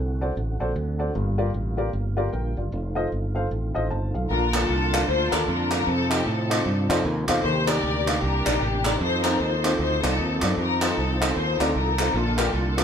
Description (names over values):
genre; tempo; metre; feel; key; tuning
uptempo gospel; 153 BPM; 4/4; swing 61% on 8ths; Bb major; A4 = 440 Hz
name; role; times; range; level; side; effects
dark baby grand piano; accompaniment; 0.0-12.8 s; G2 to A5; -28 LUFS; left 1 dB; none
tonewheel organ; sustained chords; 0.0-12.8 s; C3 to G4; -32 LUFS; right 1 dB; slow rotary speaker, overdrive, chorus vibrato
fingered electric bass; bass; 0.0-12.8 s; F1 to A2; -26 LUFS; right 1 dB; none
muted studio string section; melody; 4.3-12.8 s; C4 to D5; -26 LUFS; left 3 dB; none
group handclap; percussion; 4.5-12.8 s; none; -28 LUFS; right 2 dB; none
room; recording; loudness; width
moderate small room reverb, RT60 0.5 s; band playing live in one room; -21 LUFS; side -8 dB against mid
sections
0.0-4.3 A section; 4.3-12.8 B section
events
none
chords
0.0 D7; 1.2 Gm7; 2.7 F7; 4.3 Bbmaj7; 5.9 F7; 7.4 Ebmaj7; 9.0 F7; 12.1 Bbmaj7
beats
0.37 0.76 | 1.15 1.55 1.94 2.33 | 2.73 3.12 3.51 3.91 | 4.30 4.69 5.08 5.48 | 5.87 6.26 6.65 7.05 | 7.44 7.83 8.22 8.62 | 9.01 9.40 9.79 10.19 | 10.58 10.97 11.36 11.75 | 12.15 12.54